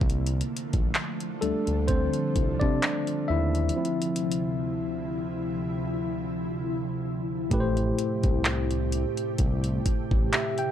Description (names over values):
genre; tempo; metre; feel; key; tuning
contemporary R&B; 64 BPM; 4/4; swing 54% on 16ths; unclear; A4 = 440 Hz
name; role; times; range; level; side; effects
tine electric piano; accompaniment; 0.0-10.7 s; A2 to G5; -29 LUFS; left 2 dB; medium stereo tremolo
ethereal airy pad; sustained chords; 0.0-10.7 s; D2 to G4; -32 LUFS; right 1 dB; ensemble chorus, built-in reverb
smooth synth bass; bass; 0.0-10.3 s; A1 to C3; -28 LUFS; equal; none
smooth R&B drum kit; drums; 0.0-10.7 s; handclaps, hi-hat, kick drum; -27 LUFS; equal; none
room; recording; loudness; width
little or no reverb; dry, gritty hardware recording; -25 LUFS; side -10 dB against mid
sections
0.0-7.5 A section; 7.5-10.7 B section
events
tine electric piano solo 0.0-7.5; break 3.8-7.5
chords
0.0 F6; 3.8 Dm9; 7.5 Am7